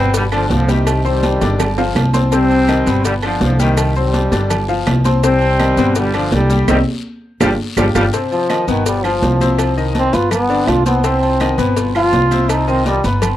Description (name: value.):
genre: latin, salsa.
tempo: 165 BPM.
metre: 4/4.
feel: straight.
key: C harmonic minor.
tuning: A4 = 440 Hz.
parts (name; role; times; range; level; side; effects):
bright trombone section; melody; 0.0-8.0 s; C3 to C4; -18 LUFS; equal; none.
bright grand piano; accompaniment; 0.0-13.3 s; B2 to C6; -20 LUFS; left 4 dB; none.
upright bass; bass; 0.0-13.4 s; G1 to C2; -18 LUFS; equal; none.
agogo bells and timbales; percussion; 0.1-13.4 s; none; -24 LUFS; right 6 dB; none.
congas; percussion; 0.1-13.4 s; none; -22 LUFS; equal; none.
cowbell; percussion; 0.1-13.4 s; none; -24 LUFS; left 6 dB; none.
guiro; percussion; 0.1-13.4 s; none; -34 LUFS; left 7 dB; none.
maracas; percussion; 0.1-13.4 s; none; -30 LUFS; right 8 dB; none.
claves; percussion; 0.3-13.4 s; none; -30 LUFS; right 8 dB; none.
bright trombone; melody; 8.3-13.0 s; Eb3 to F4; -17 LUFS; equal; tape echo.
room: light reverb.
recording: dry, close 1970s-style studio recording.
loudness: -13 LUFS.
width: side -13 dB against mid.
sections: 0.0-8.1 A section; 8.1-13.4 B section.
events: drum fill 1.4-2.3, 7.0-8.1; band accent 6.7-8.1; trombone solo 8.1-13.4.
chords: 0.1 G; 0.9 Cm; 1.6 G5; 2.3 Cm; 3.0 G; 3.8 Cm; 4.5 G5; 5.2 Cm; 6.0 G; 6.7 Cm; 7.4 G5; 8.1 Cm; 8.9 G7; 9.6 Cm; 10.3 G; 11.0 Cm; 11.8 G7; 12.5 Cm.